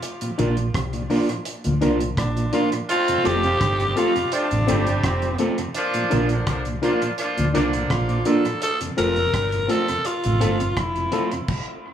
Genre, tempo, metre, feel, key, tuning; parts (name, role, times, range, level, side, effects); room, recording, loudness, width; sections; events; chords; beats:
roots reggae; 84 BPM; 4/4; straight; F major; A4 = 442 Hz
deep reggae drum kit; drums; 0.0-11.7 s; crash cymbal, hi-hat, kick drum, rim click; -30 LUFS; right 1 dB; dub echo
mellow tonewheel organ; accompaniment; 0.2-11.4 s; F2 to F4; -30 LUFS; equal; slow rotary speaker, dub echo
electric guitar at the edge of break-up; accompaniment; 0.4-11.3 s; F3 to F4; -28 LUFS; right 6 dB; dub echo
barky reed electric piano; stabs; 0.4-11.3 s; C4 to Bb4; -25 LUFS; left 5 dB; overdrive
deep dub fingered electric bass; bass; 0.4-11.1 s; F1 to D2; -24 LUFS; right 1 dB
growling tenor saxophone; melody; 2.2-11.3 s; C4 to Bb4; -25 LUFS; equal; dub echo
clear horn section; second line; 2.9-8.2 s; D3 to A4; -26 LUFS; right 1 dB; tube saturation, dub echo
light reverb, studio ambience; -19 LUFS; side -9 dB against mid
0.0-11.9 A section
stop 11.5-11.9
0.0 Bb; 2.9 F; 5.8 Bb; 8.6 F
| 0.03 0.74 1.46 2.17 | 2.89 3.61 4.32 5.04 | 5.76 6.47 7.19 7.90 | 8.62 9.34 10.05 10.77 | 11.49